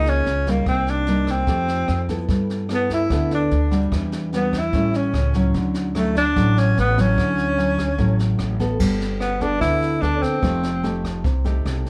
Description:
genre	bossa nova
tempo	147 BPM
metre	4/4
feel	straight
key	D major, G major from 8.8 s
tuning	A4 = 440 Hz
part	breathy tenor saxophone	melody	0.0-11.0 s	A3 to E4	-25 LUFS	equal	plate reverb
part	nylon-string guitar	accompaniment	0.0-11.9 s	A2 to A4	-25 LUFS	equal	none
part	upright bass	bass	0.0-11.8 s	F1 to G2	-26 LUFS	equal	none
part	jazz brush drum kit	drums	0.1-11.9 s	crash cymbal, kick drum, rim click, snare drum	-31 LUFS	equal	none
part	breathy trombone	second line	2.7-11.0 s	A3 to E4	-32 LUFS	equal	none
room	moderate studio reverb, RT60 0.6 s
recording	dark, warm production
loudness	-20 LUFS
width	mono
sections	0.0-8.8 A section; 8.8-11.9 B section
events	none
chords	0.0 F#69 (rootless); 0.7 Cm7; 1.5 F9; 2.3 G69; 3.9 Em9; 4.7 A7; 5.5 Dmaj9; 8.8 Gmaj9; 10.4 F9

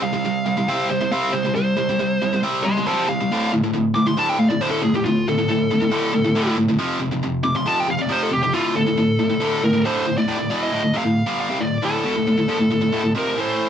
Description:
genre	metal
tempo	137 BPM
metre	4/4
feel	straight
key	D minor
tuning	A4 = 441 Hz
part	high-gain lead guitar	melody	0.0-13.7 s	F4 to D6	-22 LUFS	equal	distortion
part	tight distorted guitar	riff	0.0-13.7 s	D2 to C4	-19 LUFS	equal	distortion
room	moderate studio ambience, RT60 0.5 s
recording	band playing live in one room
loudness	-18 LUFS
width	side -9 dB against mid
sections	0.0-10.3 A section; 10.3-13.7 B section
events	lead electric guitar solo 0.0-10.3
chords	0.0 C5; 3.3 D5; 6.8 F5; 8.5 D5; 10.3 Dm

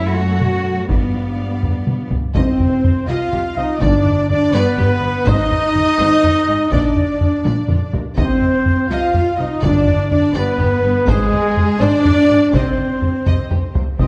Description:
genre	cinematic, epic orchestral film score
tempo	82 BPM (dotted quarters)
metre	6/8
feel	straight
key	C minor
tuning	A4 = 440 Hz
part	rich symphonic violin section	melody	0.0-14.1 s	Eb4 to G5	-34 LUFS	equal	none
part	rich symphonic violin section	second line	0.0-14.1 s	Ab4 to F5	-30 LUFS	equal	none
part	warm symphonic viola section	accompaniment	0.0-14.1 s	G3 to Eb5	-28 LUFS	equal	none
part	mellow French horn section	sustained chords	0.0-14.1 s	F3 to F4	-21 LUFS	equal	none
part	rich symphonic cello section	bass	0.0-14.1 s	G2 to F#4	-27 LUFS	equal	none
part	warm symphonic double bass section	bass	0.0-14.1 s	G1 to G2	-26 LUFS	equal	none
part	taiko ensemble	drums	0.4-14.1 s	none	-22 LUFS	equal	none
part	mellow trumpet section	stabs	2.4-13.8 s	Ab4 to F5	-24 LUFS	equal	none
part	timpani	percussion	2.4-4.5, 9.6-10.3, 14.0-14.1 s	G2 to C3	-26 LUFS	equal	none
room	wet scoring stage reverb, RT60 1.9 s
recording	dark, warm production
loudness	-16 LUFS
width	mono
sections	0.0-2.4 A section; 2.4-14.0 B section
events	drum fill 1.6-2.4, 7.4-8.2, 13.3-14.0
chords	0.0 F#m; 0.9 G7; 2.4 Cm; 3.8 G; 5.3 Ab; 6.7 Bb; 8.2 Cm; 9.6 G; 11.1 Ab; 12.5 Cm

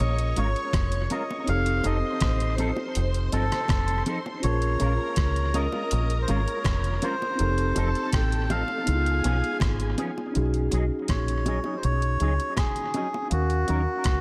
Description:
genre	lovers rock reggae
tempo	81 BPM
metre	4/4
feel	straight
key	unclear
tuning	A4 = 440 Hz
part	melodica	melody	0.0-14.2 s	F#4 to G5	-32 LUFS	equal	tape echo
part	string machine, full ensemble	second line	0.0-10.3 s	G#4 to C#6	-39 LUFS	equal	ensemble chorus, tape echo
part	mellow tine electric piano	accompaniment	0.0-14.2 s	B3 to E#5	-35 LUFS	equal	none
part	deep dub fingered electric bass	bass	0.0-14.2 s	E#1 to D#2	-28 LUFS	equal	none
part	detuned 8-bit digital drum machine	drums	0.2-14.2 s	hi-hat, kick drum, rim click	-31 LUFS	equal	gated reverb, tape echo
part	electric guitar with an envelope filter	stabs	0.4-13.8 s	F3 to A#4	-38 LUFS	equal	ensemble chorus, tape echo
part	bongos	percussion	0.4-13.9 s	none	-39 LUFS	equal	none
room	little or no reverb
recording	none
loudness	-26 LUFS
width	mono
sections	0.0-10.4 A section; 10.4-14.2 B section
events	none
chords	0.0 A#m7; 1.5 F7; 4.4 A#m7; 7.4 F7; 8.9 C#7; 10.4 B69; 13.3 D#m7

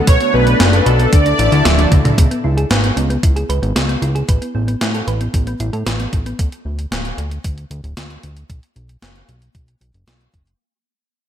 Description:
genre	synthwave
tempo	114 BPM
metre	4/4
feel	straight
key	unclear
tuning	A4 = 439 Hz
part	lush unison pad	sustained chords	0.0-2.2 s	D3 to A4	-21 LUFS	left 1 dB	chorus, sidechain pumping
part	fat analog bass	bass	0.0-10.5 s	D1 to A2	-18 LUFS	equal	sidechain pumping
part	soft supersaw	melody	0.1-1.9 s	A4 to D5	-17 LUFS	equal	wide subtle chorus, tape echo
part	thumb-piano-like synth pluck	arpeggios	0.1-6.3 s	B3 to E5	-23 LUFS	right 2 dB	chorus, digital delay
part	electronic kick drum	drums	0.1-10.4 s	none	-13 LUFS	equal	none
part	gated 80s digital drum machine	drums	0.1-10.6 s	hi-hat, snare drum, toms	-20 LUFS	equal	gated reverb, gated reverb snare
room	light reverb, digital ambience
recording	none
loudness	-13 LUFS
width	side -10 dB against mid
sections	0.0-2.2 A section; 2.2-10.6 B section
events	drum fill 1.7-2.2; fade-out 2.2-10.6; filter sweep on analog synth bass 2.2-10.6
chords	0.1 Bm7; 1.1 Dsus2; 2.2 C#m7; 4.3 Asus2; 6.4 N.C.; 8.5 B5

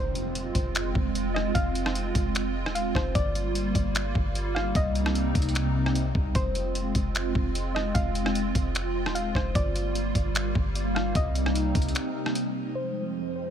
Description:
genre	hip hop, atmospheric cloud-rap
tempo	150 BPM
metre	4/4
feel	half-time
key	F minor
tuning	A4 = 440 Hz
part	soft round pluck	melody	0.0-13.1 s	C5 to F5	-34 LUFS	left 1 dB	chorus, low-pass filter, tape echo
part	hollow soft pad	sustained chords	0.0-13.5 s	F2 to C5	-29 LUFS	right 1 dB	ensemble chorus, sidechain pumping, low-pass filter
part	warm 808-style bass	bass	0.0-11.9 s	Eb1 to C2	-29 LUFS	equal	none
part	impact	sound effects	0.0-1.6 s	none	-41 LUFS	equal	none
part	trip hop sampler-style drum kit	drums	0.2-12.4 s	finger snaps, hi-hat, kick drum, rim click	-29 LUFS	equal	overdrive
room	little or no reverb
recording	none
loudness	-24 LUFS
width	side -9 dB against mid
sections	0.0-12.8 A section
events	impact 0.0-1.6; break 12.0-12.8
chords	0.0 Fm; 3.2 Gm7; 4.8 Cm7; 6.4 Fm; 9.6 Gm7; 11.2 Cm7; 12.8 Fm

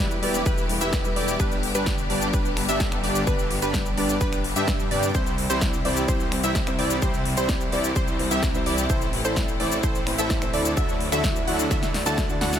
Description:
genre	EDM, festival progressive house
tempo	128 BPM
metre	4/4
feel	straight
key	unclear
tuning	A4 = 437 Hz
part	warm concert grand piano	accompaniment	0.0-12.6 s	G2 to E5	-29 LUFS	left 2 dB	sidechain pumping, dub echo
part	clear symphonic string section	sustained chords	0.0-12.6 s	C3 to G4	-33 LUFS	left 1 dB	sidechain pumping
part	wide unison pluck	arpeggios	0.0-12.6 s	B4 to A5	-31 LUFS	right 1 dB	sidechain pumping, dub echo
part	dense compressed supersaw	riff	0.0-12.6 s	D4 to A5	-28 LUFS	right 1 dB	sidechain pumping, dub echo
part	wide detuned saw bass	bass	0.0-12.6 s	E1 to G2	-31 LUFS	equal	chorus, sidechain pumping
part	big-room dance drum kit	drums	0.1-12.6 s	finger snaps, hi-hat, shaker, snare drum	-30 LUFS	left 2 dB	overdrive
part	electronic kick drum	drums	0.5-12.3 s	none	-26 LUFS	equal	overdrive
room	little or no reverb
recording	none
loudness	-21 LUFS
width	side -9 dB against mid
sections	0.0-12.6 A section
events	drum fill 11.7-12.6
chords	0.0 Em; 1.4 G; 5.1 C; 8.9 Am; 10.8 Dadd9

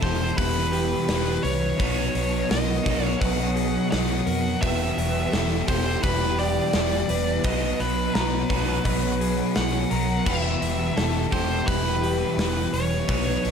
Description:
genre	rock, shoegaze and dream pop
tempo	85 BPM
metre	4/4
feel	straight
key	unclear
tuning	A4 = 441 Hz
part	nasal lead guitar with a parked wah	melody	0.0-13.5 s	B4 to F#5	-29 LUFS	left 1 dB	overdrive
part	dark analog pad	sustained chords	0.0-13.5 s	B3 to F#5	-35 LUFS	right 1 dB	chorus
part	electric guitar through a small old amp	arpeggios	0.0-13.5 s	G4 to Bb5	-32 LUFS	right 1 dB	lush chorus, tape echo
part	overdriven semi-hollow guitar	riff	0.0-13.5 s	E2 to G4	-29 LUFS	right 10 dB	reverse reverb
part	thick fuzz guitar	riff	0.0-13.5 s	E2 to B3	-29 LUFS	left 11 dB	distortion, ensemble chorus
part	vintage muted fingered electric bass	bass	0.0-13.5 s	E1 to F2	-29 LUFS	equal	none
part	gated 80s drum kit	drums	0.0-13.5 s	crash cymbal, hi-hat, kick drum, snare drum	-28 LUFS	equal	none
room	light reverb, small room ambience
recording	none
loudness	-21 LUFS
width	side -7 dB against mid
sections	0.0-13.5 A section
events	none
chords	0.0 Em; 1.8 Badd9; 4.6 Em; 7.4 Badd9; 10.3 Em

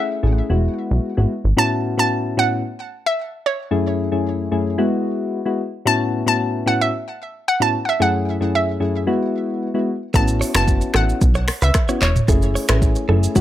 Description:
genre	afrobeats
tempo	112 BPM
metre	4/4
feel	straight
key	A major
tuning	A4 = 440 Hz
part	hollow square pluck	melody	0.0-13.1 s	C#5 to A5	-21 LUFS	right 1 dB	chorus, low-pass filter, digital delay
part	soft electric-piano-like synth keys	accompaniment	0.0-13.4 s	F#2 to G#4	-20 LUFS	left 2 dB	chorus, low-pass filter
part	plucky analog bass	bass	0.2-1.5, 10.1-13.4 s	E1 to C#2	-18 LUFS	equal	none
part	direct-recorded clean electric guitar	riff	10.1-13.2 s	A4 to C#5	-27 LUFS	right 5 dB	spring reverb, digital delay
part	afro-pop drum kit	drums	10.1-13.4 s	finger snaps, handclaps, hi-hat, kick drum, rim click, shaker, toms	-18 LUFS	equal	none
room	little or no reverb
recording	none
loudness	-17 LUFS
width	side -12 dB against mid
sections	0.0-1.6 A section; 1.6-13.4 B section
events	filter sweep 0.0-1.6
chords	0.5 Eadd9; 1.6 A6; 3.7 F#m7; 4.8 Eadd9; 5.9 A6; 8.0 F#m7; 9.1 Eadd9; 10.1 A6; 12.3 F#m7

